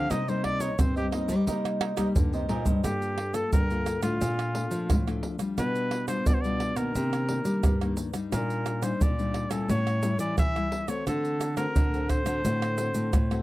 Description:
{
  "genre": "samba and choro",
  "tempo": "88 BPM",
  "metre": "4/4",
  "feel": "straight",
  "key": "G minor",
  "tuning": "A4 = 440 Hz",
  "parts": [
    { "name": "warm trumpet", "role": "melody", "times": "0.0-13.4 s", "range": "F4 to F5", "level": "-32 LUFS", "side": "equal", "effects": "none" },
    { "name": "cavaquinho", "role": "accompaniment", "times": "0.0-2.8 s", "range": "Eb4 to Eb5", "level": "-34 LUFS", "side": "right 4 dB", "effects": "none" },
    { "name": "nylon-string guitar", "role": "accompaniment", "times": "0.0-13.4 s", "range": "G2 to A4", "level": "-32 LUFS", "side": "left 4 dB", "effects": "none" },
    { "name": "nylon-string guitar", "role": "bass", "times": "0.0-13.4 s", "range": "G2 to C4", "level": "-30 LUFS", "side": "equal", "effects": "none" },
    { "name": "egg shaker, surdo, pandeiro and tamborim", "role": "percussion", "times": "0.1-13.4 s", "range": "none", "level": "-28 LUFS", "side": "right 1 dB", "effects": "none" }
  ],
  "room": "little or no reverb",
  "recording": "dry, close 1970s-style studio recording",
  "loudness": "-25 LUFS",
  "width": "side -17 dB against mid",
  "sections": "0.0-2.8 A section; 2.8-13.4 B section",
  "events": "trumpet solo 0.0-2.8; drum fill 1.8-2.8",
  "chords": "0.1 Cm7; 2.8 Gm9; 4.2 Bbmaj7; 5.6 G7/B; 7.0 Cm9; 8.3 Ebmaj7/Bb; 9.7 A7; 11.1 D7"
}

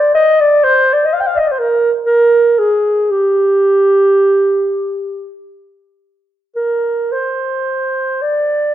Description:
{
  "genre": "classical, free, expressive piece for unaccompanied clarinet",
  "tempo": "48-63 BPM",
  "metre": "3/4",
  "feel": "rubato",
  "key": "C minor",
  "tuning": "A4 = 440 Hz",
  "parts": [
    { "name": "dark clarinet", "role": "solo", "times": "0.0-8.7 s", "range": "G4 to G5", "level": "-11 LUFS", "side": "right 1 dB", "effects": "none" }
  ],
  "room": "moderate recital hall reverb, RT60 1.4 s",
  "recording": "dark, warm production",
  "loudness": "-11 LUFS",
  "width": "side -12 dB against mid",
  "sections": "0.0-8.7 A section",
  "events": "none",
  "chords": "none"
}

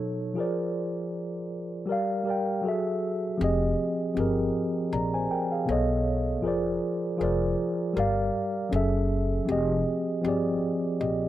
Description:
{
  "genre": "lo-fi hip hop",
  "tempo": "79 BPM",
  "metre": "4/4",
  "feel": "swing 56% on 16ths",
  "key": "F dorian",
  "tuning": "A4 = 439 Hz",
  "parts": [
    { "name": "mellow tine electric piano", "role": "accompaniment", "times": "0.0-11.3 s", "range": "B2 to Bb5", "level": "-26 LUFS", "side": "equal", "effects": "medium stereo tremolo, cassette tape, low-pass filter" },
    { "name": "upright bass", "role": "bass", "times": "3.4-11.3 s", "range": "F1 to B1", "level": "-30 LUFS", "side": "equal", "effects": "none" }
  ],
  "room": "moderate spring reverb, RT60 1.6 s",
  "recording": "none",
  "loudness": "-25 LUFS",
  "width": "side -13 dB against mid",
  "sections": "0.0-3.4 A section; 3.4-11.3 B section",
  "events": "none",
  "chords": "0.4 Bb9/F; 1.9 Gm7; 2.6 Gbm9; 3.4 Fm9; 5.7 B9; 6.4 Bb9/F; 8.0 Gm7; 8.7 Gbm9; 9.5 Fm9"
}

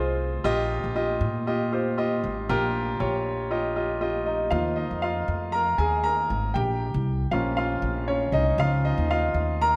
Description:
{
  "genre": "piano-driven pop",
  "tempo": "118 BPM",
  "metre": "4/4",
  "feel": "swing 56% on 16ths",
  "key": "unclear",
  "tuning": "A4 = 441 Hz",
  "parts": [
    { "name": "clear baby grand piano", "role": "accompaniment", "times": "0.0-9.8 s", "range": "Bb2 to Bb5", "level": "-27 LUFS", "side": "equal", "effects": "none" },
    { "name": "upright bass", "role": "bass", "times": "0.0-9.8 s", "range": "Ab1 to Bb2", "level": "-30 LUFS", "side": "equal", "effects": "none" }
  ],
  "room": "moderate concert hall reverb, RT60 2.4 s",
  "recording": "none",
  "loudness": "-26 LUFS",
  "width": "mono",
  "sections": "0.0-4.5 A section; 4.5-9.8 B section",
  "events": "grand piano solo 4.5-9.8",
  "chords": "0.5 Ebadd9; 4.5 Ebsus2; 6.6 Bbm; 8.6 Dbadd9"
}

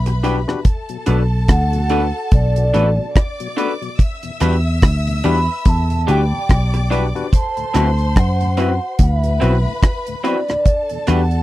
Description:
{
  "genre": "lovers rock reggae",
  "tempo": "72 BPM",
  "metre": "4/4",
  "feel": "swing 58% on 16ths",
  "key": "E minor",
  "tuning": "A4 = 440 Hz",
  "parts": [
    { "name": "warm studio violin section", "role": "second line", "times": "0.0-11.4 s", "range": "A4 to E6", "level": "-28 LUFS", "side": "left 2 dB", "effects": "none" },
    { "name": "vintage muted picked electric bass", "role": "bass", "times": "0.0-11.4 s", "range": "A1 to F#2", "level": "-16 LUFS", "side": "equal", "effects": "none" },
    { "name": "tonewheel organ", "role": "accompaniment", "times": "0.1-11.2 s", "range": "D2 to E4", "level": "-29 LUFS", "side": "left 6 dB", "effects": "none" },
    { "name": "electric guitar through a small old amp", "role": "stabs", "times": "0.1-11.2 s", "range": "C4 to B4", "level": "-22 LUFS", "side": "right 1 dB", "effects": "none" },
    { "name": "deep reggae drum kit", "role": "drums", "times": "0.1-11.4 s", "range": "hi-hat, kick drum, rim click", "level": "-15 LUFS", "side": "equal", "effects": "none" },
    { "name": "barky tine electric piano", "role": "accompaniment", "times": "0.2-11.2 s", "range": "C4 to B4", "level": "-23 LUFS", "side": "left 5 dB", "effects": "overdrive" },
    { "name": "hollow clarinet-like synth lead", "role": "melody", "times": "1.5-11.4 s", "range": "D5 to B5", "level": "-23 LUFS", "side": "right 1 dB", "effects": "chorus, tape echo" }
  ],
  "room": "little or no reverb",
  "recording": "dry, close 1970s-style studio recording",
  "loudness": "-14 LUFS",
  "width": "side -16 dB against mid",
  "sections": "0.0-11.4 A section",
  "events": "none",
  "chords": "0.0 Em7; 0.7 Bm7; 4.0 Em7; 7.3 D13; 10.7 Em7"
}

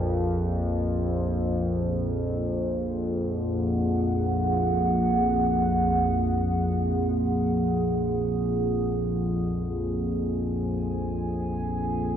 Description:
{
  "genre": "dark ambient drone",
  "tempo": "free time",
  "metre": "none",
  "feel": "none",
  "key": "unclear",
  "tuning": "A4 = 440 Hz",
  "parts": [
    { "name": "analog drone", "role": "drone", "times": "0.0-12.2 s", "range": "Bb1 to F2", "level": "-26 LUFS", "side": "equal", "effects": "chorus" },
    { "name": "dark analog pad", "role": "sustained chords", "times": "0.4-12.2 s", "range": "Bb3 to Ab5", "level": "-28 LUFS", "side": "right 1 dB", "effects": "lush chorus" }
  ],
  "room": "wet cathedral reverb, RT60 5.1 s",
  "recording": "worn, warbling old tape, cassette tape, warbly pitch drift",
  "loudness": "-24 LUFS",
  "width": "side -9 dB against mid",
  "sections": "0.0-12.2 A section",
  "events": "none",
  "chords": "0.3 Gbadd9/Bb"
}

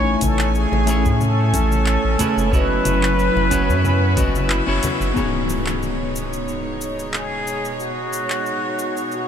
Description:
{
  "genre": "sunset chillout",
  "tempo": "91 BPM",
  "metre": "4/4",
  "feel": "swing 54% on 16ths",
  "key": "B mixolydian",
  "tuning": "A4 = 440 Hz",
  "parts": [
    { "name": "trumpet with plunger mute", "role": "melody", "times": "0.0-9.3 s", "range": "F#4 to C#5", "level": "-24 LUFS", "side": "left 2 dB", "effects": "tape echo" },
    { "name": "semi-hollow electric guitar", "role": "accompaniment", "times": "0.0-9.3 s", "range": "A3 to G#5", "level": "-24 LUFS", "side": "moving between left 5 dB and right 5 dB", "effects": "auto-pan, ping-pong delay" },
    { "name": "warm studio string section", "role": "sustained chords", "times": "0.0-9.3 s", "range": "B2 to G#5", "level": "-24 LUFS", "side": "right 2 dB", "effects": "none" },
    { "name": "round analog bass", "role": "bass", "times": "0.0-5.1 s", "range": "F#1 to A2", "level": "-20 LUFS", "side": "equal", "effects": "tube saturation" },
    { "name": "electronic kick drum", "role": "drums", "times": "0.2-4.3 s", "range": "none", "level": "-22 LUFS", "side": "equal", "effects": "none" },
    { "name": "smooth R&B drum kit", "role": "drums", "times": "0.2-9.3 s", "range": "cabasa, handclaps, hi-hat", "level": "-29 LUFS", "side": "equal", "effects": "none" },
    { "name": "congas", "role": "percussion", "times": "0.2-5.0 s", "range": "none", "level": "-30 LUFS", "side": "left 2 dB", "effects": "none" },
    { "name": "impact", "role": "sound effects", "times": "5.2-7.8 s", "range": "none", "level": "-28 LUFS", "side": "equal", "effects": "none" }
  ],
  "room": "moderate huge ambient reverb, RT60 7.1 s",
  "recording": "dreamy mix soaked in reverb",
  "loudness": "-17 LUFS",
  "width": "side -8 dB against mid",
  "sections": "0.0-5.2 A section; 5.2-9.3 B section",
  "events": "band accent 4.5-4.8; impact 5.2-7.8",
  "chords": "0.0 Amaj7; 2.5 F#7sus4; 5.2 B69"
}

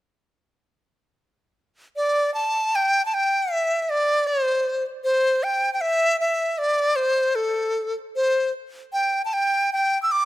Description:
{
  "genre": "chinese traditional",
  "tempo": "78 BPM",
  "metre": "2/4",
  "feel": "rubato",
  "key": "G zhi mode",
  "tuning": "A4 = 441 Hz",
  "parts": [
    { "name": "breathy dizi", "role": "melody", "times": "2.0-10.2 s", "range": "A4 to E6", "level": "-20 LUFS", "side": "equal", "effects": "none" }
  ],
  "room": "light reverb",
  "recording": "close, detailed microphones",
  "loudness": "-20 LUFS",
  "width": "side -15 dB against mid",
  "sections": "2.0-10.2 A section",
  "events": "none",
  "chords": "none"
}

